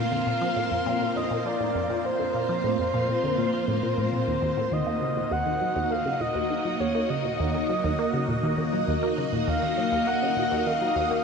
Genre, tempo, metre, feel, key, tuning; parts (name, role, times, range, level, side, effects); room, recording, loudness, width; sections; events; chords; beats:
ambient, sequencer-driven space music; 101 BPM; 4/4; straight; Eb minor from 4.7 s; A4 = 440 Hz
breathy flute-like synth lead; melody; 0.0-11.2 s; C5 to Gb5; -28 LUFS; equal; chorus, analog delay
phased string machine; sustained chords; 0.0-11.2 s; Bb3 to Eb5; -28 LUFS; equal; ensemble chorus, phaser
wind-like tuned noise texture; texture; 0.0-11.2 s; Bb4 to Eb5; -41 LUFS; equal
resonant blip pluck; riff; 0.1-11.2 s; Eb2 to Bb3; -29 LUFS; equal; phaser, analog delay
wet huge ambient reverb, RT60 7.6 s; -23 LUFS; side -5 dB against mid
0.0-4.7 A section; 4.7-11.2 B section
0.0 Bbsus2; 4.7 Ebm
0.56 1.16 1.75 | 2.35 2.94 3.54 4.13 | 4.72 5.32 5.91 6.50 | 7.10 7.69 8.29 8.88 | 9.48 10.07 10.66